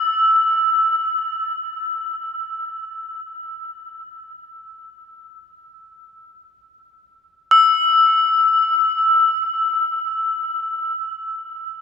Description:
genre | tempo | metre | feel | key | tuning
world meditative, free-time meditation music | free time | none | none | unclear | A4 = 440 Hz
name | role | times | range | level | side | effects
crotales | solo | 0.0-10.8 s | E6 to A6 | -16 LUFS | left 2 dB | diffuse ambient delay
room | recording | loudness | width
wet huge ambient reverb, RT60 8.0 s | none | -16 LUFS | side -7 dB against mid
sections
0.0-7.5 A section; 7.5-11.8 B section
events
none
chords
none

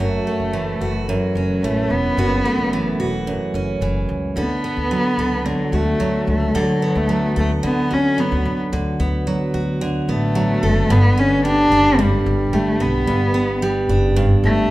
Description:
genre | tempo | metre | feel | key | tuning
pop | 110 BPM | 4/4 | straight | D major | A4 = 441 Hz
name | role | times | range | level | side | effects
dark cello | melody | 0.0-14.7 s | F#3 to D4 | -20 LUFS | left 1 dB | none
picked steel-string acoustic guitar | accompaniment | 0.0-14.7 s | F#2 to A4 | -20 LUFS | right 1 dB | none
upright bass | bass | 0.0-14.7 s | E1 to D3 | -23 LUFS | equal | none
room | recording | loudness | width
moderate recital hall reverb, RT60 1.4 s | recorded in a church or concert hall | -16 LUFS | side -17 dB against mid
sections
0.0-8.7 A section; 8.7-10.9 B section; 10.9-14.7 C section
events
none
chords
0.0 F#m7; 4.4 D6; 10.9 G

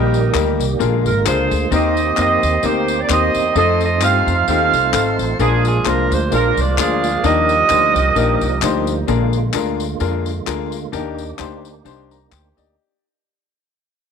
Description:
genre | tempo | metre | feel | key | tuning
uptempo gospel | 130 BPM | 4/4 | swing 55% on 8ths | Eb major | A4 = 440 Hz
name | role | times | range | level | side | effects
bright saxophone section | melody | 0.0-8.8 s | D4 to F5 | -17 LUFS | right 4 dB | none
warm upright piano | accompaniment | 0.0-13.0 s | Bb2 to Bb5 | -21 LUFS | left 12 dB | none
percussive tonewheel organ | sustained chords | 0.0-12.8 s | D3 to G4 | -24 LUFS | right 11 dB | fast rotary speaker, chorus vibrato
upright bass | bass | 0.0-12.8 s | Ab1 to G2 | -20 LUFS | equal | none
tambourine and handclaps | percussion | 0.1-12.7 s | none | -27 LUFS | left 13 dB | none
room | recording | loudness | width
light reverb, small room ambience | 1960s-style stereo with parts hard left and right | -14 LUFS | side -6 dB against mid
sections
0.0-9.1 A section; 9.1-12.8 B section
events
fade-out 9.1-12.8; upright piano fill 11.9-12.8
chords
0.0 Eb/Bb; 0.8 Bb7; 1.7 Eb6; 3.6 F7; 5.4 Bb7; 7.2 Ebmaj7; 9.1 Bb7; 10.9 Ebmaj7

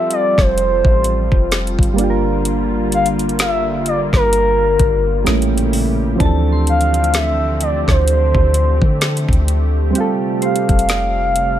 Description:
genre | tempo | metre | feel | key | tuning
contemporary R&B | 64 BPM | 4/4 | swing 58% on 16ths | F major | A4 = 440 Hz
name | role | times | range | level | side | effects
gliding portamento lead | melody | 0.0-11.6 s | Bb4 to F5 | -18 LUFS | equal | chorus, tape echo
soft electric-piano-like synth keys | accompaniment | 0.0-11.6 s | E3 to Bb4 | -21 LUFS | right 3 dB | chorus
warm analog pad | sustained chords | 0.0-11.6 s | Bb2 to G4 | -24 LUFS | left 1 dB | wide subtle chorus
smooth R&B drum kit | drums | 0.1-11.6 s | hi-hat, kick drum, snare drum | -17 LUFS | equal | none
soft 808-style bass | bass | 0.4-11.6 s | F1 to D3 | -18 LUFS | equal | none
soft synth bell | texture | 6.2-11.6 s | C5 to C6 | -30 LUFS | equal | chorus, phaser, tape echo
room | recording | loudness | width
little or no reverb | none | -13 LUFS | side -11 dB against mid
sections
0.0-11.6 A section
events
none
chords
0.0 Fadd9; 2.0 Gm7; 5.3 A7b9; 6.2 Dm9; 10.0 Fadd9

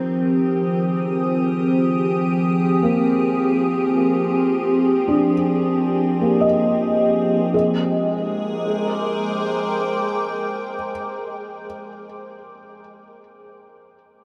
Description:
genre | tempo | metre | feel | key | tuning
ambient | free time | none | none | Ab lydian | A4 = 440 Hz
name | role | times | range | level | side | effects
evolving wavetable pad | sustained chords | 0.0-12.5 s | Eb3 to Eb6 | -22 LUFS | equal | chorus, built-in reverb
felt-muted upright piano | arpeggios | 2.8-14.2 s | Bb3 to Eb5 | -24 LUFS | equal | delay
room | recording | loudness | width
wet huge ambient reverb, RT60 8.1 s | none | -20 LUFS | mono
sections
0.0-7.5 A section; 7.5-12.0 B section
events
none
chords
0.0 Fm9; 7.5 Abmaj9#11

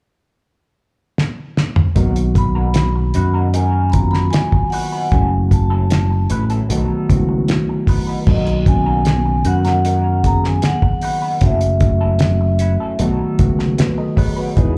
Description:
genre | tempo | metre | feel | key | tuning
lush 1970s-style soul | 76 BPM | 4/4 | straight | B major | A4 = 439 Hz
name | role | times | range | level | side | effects
cloth-damped thuddy drum kit | drums | 1.2-14.8 s | crash cymbal, hi-hat, kick drum, snare drum, toms | -20 LUFS | equal | none
mellow reed electric piano | accompaniment | 2.0-14.8 s | C#3 to D#5 | -24 LUFS | equal | slapback echo
electric guitar through a small old amp | riff | 2.0-14.7 s | B3 to B4 | -32 LUFS | equal | wah, slapback echo
fingered electric bass | bass | 2.0-14.8 s | F#1 to F#2 | -19 LUFS | equal | none
vibraphone with soft mallets | melody | 2.4-13.0 s | D#5 to B5 | -24 LUFS | equal | slapback echo
room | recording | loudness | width
small room ambience | live gig heard through the venue's PA, club reverb | -16 LUFS | mono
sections
0.0-2.0 A section; 2.0-8.3 B section; 8.3-14.8 C section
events
drum fill 1.2-2.0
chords
0.0 N.C.; 2.0 Bmaj7; 5.1 F#m7; 6.7 B7; 8.3 Bmaj7; 11.4 F#m7; 13.0 B7

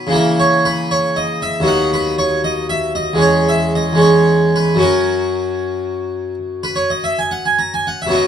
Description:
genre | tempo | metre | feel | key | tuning
classical, baroque-style suite movement for harpsichord | 72-82 BPM (dotted quarters) | 12/8 | rubato | unclear | A4 = 440 Hz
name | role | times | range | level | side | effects
harpsichord | solo | 0.0-8.3 s | D#2 to A#5 | -14 LUFS | equal | none
room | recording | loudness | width
moderate stone room reverb, RT60 1.1 s | dark, warm production | -14 LUFS | side -8 dB against mid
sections
0.0-8.3 A section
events
none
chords
0.1 A#dim/C#; 1.7 B/D#; 3.2 C#m/E; 4.8 F#

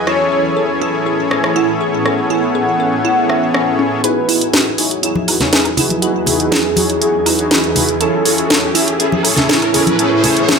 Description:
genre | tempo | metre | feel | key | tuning
progressive house | 121 BPM | 4/4 | straight | E major | A4 = 442 Hz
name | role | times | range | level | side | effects
shimmering ambient pad | sustained chords | 0.0-10.6 s | E2 to G#5 | -22 LUFS | right 1 dB | chorus, built-in reverb
soft supersaw | stabs | 0.0-10.6 s | C#4 to E5 | -18 LUFS | left 2 dB | low-pass filter, digital delay
backwards swelling texture | texture | 0.0-4.0 s | none | barely audible | none | none
warm velvety synth lead | melody | 0.1-10.6 s | E4 to F#5 | -19 LUFS | right 1 dB | chorus, tremolo, digital delay
glassy wavetable pluck | arpeggios | 0.1-10.6 s | C#4 to E5 | -21 LUFS | right 1 dB | chorus, digital delay
house drum kit | drums | 0.1-10.6 s | hi-hat, rim click, snare drum | -15 LUFS | right 1 dB | overdrive
soft round pluck | second line | 4.0-10.6 s | E4 to B4 | -28 LUFS | right 3 dB | none
riser | sound effects | 5.8-10.6 s | none | -24 LUFS | right 2 dB | none
congas and woodblock | percussion | 5.2-10.6 s | none | -22 LUFS | left 2 dB | none
room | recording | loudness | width
moderate recital hall reverb, RT60 1.5 s, digital ambience | none | -12 LUFS | side -5 dB against mid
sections
0.0-4.0 A section; 4.0-10.6 B section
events
build-up 4.0-10.6; filter sweep on supersaw synth 4.0-10.6; riser 5.8-10.6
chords
0.1 Amaj7; 4.0 Emaj9; 8.0 Amaj7

